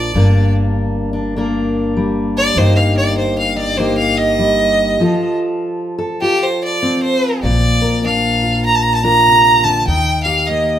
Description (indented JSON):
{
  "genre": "acoustic folk duo or small band",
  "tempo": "99 BPM",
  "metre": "4/4",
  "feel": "swing 61% on 8ths",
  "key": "Bb major",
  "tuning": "A4 = 441 Hz",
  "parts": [
    { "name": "clear fiddle", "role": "melody", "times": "0.0-10.8 s", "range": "G4 to Bb5", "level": "-14 LUFS", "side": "right 1 dB", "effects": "none" },
    { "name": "fingerpicked steel-string acoustic guitar", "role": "accompaniment", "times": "0.0-10.8 s", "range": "G2 to Bb4", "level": "-17 LUFS", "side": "left 1 dB", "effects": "none" },
    { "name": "upright bass", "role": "bass", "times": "0.0-10.8 s", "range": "G1 to Eb2", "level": "-21 LUFS", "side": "equal", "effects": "none" }
  ],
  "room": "wet large studio reverb, RT60 0.9 s",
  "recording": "band playing live in one room",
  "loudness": "-12 LUFS",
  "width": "side -10 dB against mid",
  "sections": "0.0-7.4 A section; 7.4-10.8 B section",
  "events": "fiddle solo 0.0-7.4; break 5.0-7.4",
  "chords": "0.1 Gm; 2.6 Eb/G; 5.0 F; 7.4 Bb; 9.9 Eb"
}